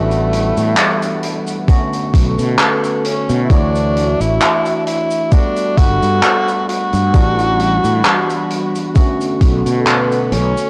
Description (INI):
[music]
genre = vaporwave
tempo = 66 BPM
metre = 4/4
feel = swing 55% on 16ths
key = unclear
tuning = A4 = 440 Hz
[part]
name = warm tenor saxophone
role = melody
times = 0.0-10.7 s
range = A3 to F#4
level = -21 LUFS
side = equal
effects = tape echo
[part]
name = barky tine electric piano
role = accompaniment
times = 0.0-10.7 s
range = D3 to C#5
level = -24 LUFS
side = equal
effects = overdrive, lush chorus, vintage 12-bit sampler grit
[part]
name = warbly tape-like pad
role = sustained chords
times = 0.1-10.7 s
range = G3 to C#6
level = -28 LUFS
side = equal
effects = chorus, built-in reverb
[part]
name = fretless electric bass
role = bass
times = 0.0-10.5 s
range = G1 to B2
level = -19 LUFS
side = equal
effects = none
[part]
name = huge arena drum kit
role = drums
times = 0.1-10.7 s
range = cabasa, handclaps, hi-hat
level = -22 LUFS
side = equal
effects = none
[part]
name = electronic kick drum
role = drums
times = 1.7-9.6 s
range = none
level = -13 LUFS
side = equal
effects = overdrive
[sound]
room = little or no reverb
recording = dry, gritty hardware recording, cassette tape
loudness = -15 LUFS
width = mono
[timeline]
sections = 0.0-10.7 A section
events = none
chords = 0.0 A13sus4; 1.7 Bm9; 3.5 Dmaj9; 5.3 Gmaj9; 7.1 A13sus4; 9.0 Bm9